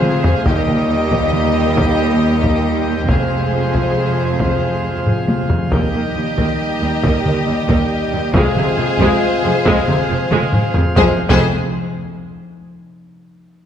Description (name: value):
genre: cinematic, epic orchestral film score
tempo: 137 BPM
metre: 3/4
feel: straight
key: F minor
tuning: A4 = 441 Hz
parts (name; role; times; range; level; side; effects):
- warm symphonic violin section; melody; 0.0-11.5 s; C5 to Eb5; -26 LUFS; left 5 dB; none
- warm symphonic violin section; second line; 0.0-11.5 s; G4 to Ab4; -25 LUFS; left 4 dB; none
- dark symphonic viola section; accompaniment; 0.0-11.5 s; C3 to Bb3; -24 LUFS; right 2 dB; none
- bright trombone section; sustained chords; 0.0-11.2 s; Bb2 to Ab3; -27 LUFS; right 5 dB; none
- dark French horn section; sustained chords; 0.0-11.2 s; Ab3 to F4; -26 LUFS; left 4 dB; none
- pipe organ, sparkling flutes; sustained chords; 0.0-11.2 s; Bb3 to G5; -24 LUFS; equal; none
- warm trumpet; stabs; 0.0-5.5 s; C5 to Eb5; -25 LUFS; left 2 dB; none
- rich symphonic cello section; bass; 0.0-11.5 s; Eb2 to F2; -22 LUFS; right 2 dB; none
- warm symphonic double bass section; bass; 0.0-11.5 s; F1 to Eb2; -23 LUFS; right 3 dB; none
- taiko ensemble; drums; 0.0-12.1 s; none; -19 LUFS; equal; none
- timpani; percussion; 3.1-5.7, 11.0-11.5 s; F2; -26 LUFS; left 1 dB; none
room: wet concert hall reverb, RT60 2.2 s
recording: none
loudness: -14 LUFS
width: side -9 dB against mid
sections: 0.0-5.7 A section; 5.7-11.0 B section; 11.0-12.3 C section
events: drum fill 0.0-0.5, 5.1-5.7, 10.3-11.0; timpani fill 3.1-5.7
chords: 0.5 Eb; 3.1 Fm; 5.7 Eb; 8.3 Fm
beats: 0.02 | 0.46 0.90 1.33 | 1.77 2.21 2.65 | 3.09 3.53 3.96 | 4.40 4.84 5.28 | 5.72 6.16 6.59 | 7.03 7.47 7.91 | 8.34 8.78 9.22 | 9.66 10.09 10.53 | 10.97 11.41 11.84